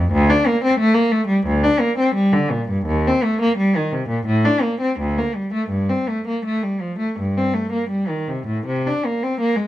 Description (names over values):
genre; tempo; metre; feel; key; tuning
classical, baroque-style suite movement for unaccompanied cello; 76-90 BPM; 4/4; rubato; G minor; A4 = 439 Hz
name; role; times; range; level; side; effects
rich cello; solo; 0.0-9.7 s; D2 to D4; -17 LUFS; equal; none
room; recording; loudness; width
light reverb; dark, warm production; -17 LUFS; side -14 dB against mid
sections
0.0-8.7 A section; 8.7-9.7 A section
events
none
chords
none